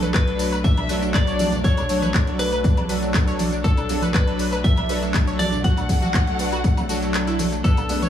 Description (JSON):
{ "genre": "progressive house", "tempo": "120 BPM", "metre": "4/4", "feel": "straight", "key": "unclear", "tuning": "A4 = 440 Hz", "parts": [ { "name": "clean electric guitar", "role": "melody", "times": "0.0-8.1 s", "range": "A4 to F#5", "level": "-29 LUFS", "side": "left 2 dB", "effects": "sidechain pumping, digital delay" }, { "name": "dark studio violin section", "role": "second line", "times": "0.0-8.1 s", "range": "A4 to F#5", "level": "-32 LUFS", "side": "left 2 dB", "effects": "sidechain pumping, digital delay" }, { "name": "warm analog pad", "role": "sustained chords", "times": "0.0-8.1 s", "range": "F#3 to D4", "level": "-30 LUFS", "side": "left 1 dB", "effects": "chorus, sidechain pumping" }, { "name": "wide unison pluck", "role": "arpeggios", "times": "0.0-8.1 s", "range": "A3 to C#5", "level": "-31 LUFS", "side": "equal", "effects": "sidechain pumping, digital delay" }, { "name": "round analog bass", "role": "bass", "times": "0.0-8.1 s", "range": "B1", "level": "-28 LUFS", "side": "left 1 dB", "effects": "sidechain pumping" }, { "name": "house drum kit", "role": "drums", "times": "0.0-8.1 s", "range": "handclaps, hi-hat, tambourine, woodblock", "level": "-29 LUFS", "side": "left 1 dB", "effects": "sidechain pumping on hats, sidechain pumping on perc" }, { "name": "congas and bongos", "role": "percussion", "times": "0.0-8.1 s", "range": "none", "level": "-30 LUFS", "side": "right 2 dB", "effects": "sidechain pumping on perc" }, { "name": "electronic kick drum", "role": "drums", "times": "0.1-7.7 s", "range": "none", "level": "-19 LUFS", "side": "left 1 dB", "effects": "overdrive" }, { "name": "soft supersaw", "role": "stabs", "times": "0.3-8.0 s", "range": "F#3 to B4", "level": "-26 LUFS", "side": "right 2 dB", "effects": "sidechain pumping" } ], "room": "little or no reverb", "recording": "none", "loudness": "-18 LUFS", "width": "side -10 dB against mid", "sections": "0.0-8.1 A section", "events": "kick drops out 7.1-7.6", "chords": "0.0 D/B", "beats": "0.14 0.64 1.14 | 1.64 2.14 2.64 3.14 | 3.64 4.14 4.64 5.14 | 5.64 6.14 6.64 7.14 | 7.64" }